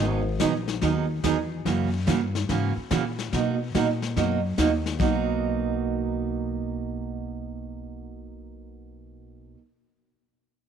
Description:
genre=country, western swing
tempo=144 BPM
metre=4/4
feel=swing 66% on 8ths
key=B major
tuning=A4 = 439 Hz
part: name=picked steel-string acoustic guitar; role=accompaniment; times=0.0-9.6 s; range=B2 to G#4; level=-26 LUFS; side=right 7 dB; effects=none
part: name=upright bass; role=bass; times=0.0-9.5 s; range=G#1 to B2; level=-29 LUFS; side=left 2 dB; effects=none
part: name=vintage brush drum kit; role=drums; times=0.4-5.3 s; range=brushed snare drum, hi-hat, kick drum, snare drum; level=-31 LUFS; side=left 7 dB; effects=none
room=light reverb, small room ambience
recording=1960s-style stereo with parts hard left and right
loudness=-23 LUFS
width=side -8 dB against mid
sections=0.0-5.0 A section; 5.0-8.3 B section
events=none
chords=0.0 G#m9; 1.7 F#9; 3.3 Bmaj7

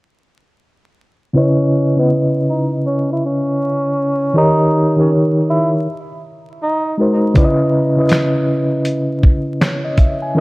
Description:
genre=lo-fi hip hop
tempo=80 BPM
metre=4/4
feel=swing 65% on 16ths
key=C# dorian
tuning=A4 = 444 Hz
part: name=mellow reed electric piano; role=accompaniment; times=1.3-10.4 s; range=C#3 to G#5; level=-14 LUFS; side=equal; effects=fast tremolo, cassette tape, low-pass filter
part: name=breathy tenor saxophone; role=melody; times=1.4-7.0 s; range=B3 to E4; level=-19 LUFS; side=equal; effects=low-pass filter, tape echo
part: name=dusty soul sampler-style drum kit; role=drums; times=7.4-10.2 s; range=finger snaps, hi-hat, kick drum, snare drum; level=-13 LUFS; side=equal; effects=none
room=light reverb, digital ambience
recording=echo-heavy mix, vinyl crackle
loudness=-13 LUFS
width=side -22 dB against mid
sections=1.4-10.4 A section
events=filter sweep 1.4-10.4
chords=1.4 C#m9; 4.4 D#7; 5.9 G#9; 7.4 C#m9

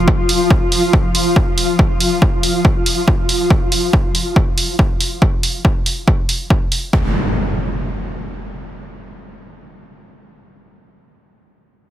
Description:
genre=driving peak-time techno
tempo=140 BPM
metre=4/4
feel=straight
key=unclear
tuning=A4 = 440 Hz
part: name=swarming drone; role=drone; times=0.0-3.5 s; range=F3 to F4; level=-19 LUFS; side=left 1 dB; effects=built-in reverb, sidechain pumping
part: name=electronic kick drum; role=drums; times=0.1-7.0 s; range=none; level=-15 LUFS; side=equal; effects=none
part: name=electronic hi-hat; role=drums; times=0.3-6.8 s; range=none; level=-19 LUFS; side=right 2 dB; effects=none
part: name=impact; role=sound effects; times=6.9-10.8 s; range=none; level=-22 LUFS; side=equal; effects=none
room=light reverb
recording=heavily compressed radio sound, multiband compression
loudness=-13 LUFS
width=side -12 dB against mid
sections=0.0-6.9 A section; 6.9-10.4 B section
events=none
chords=none

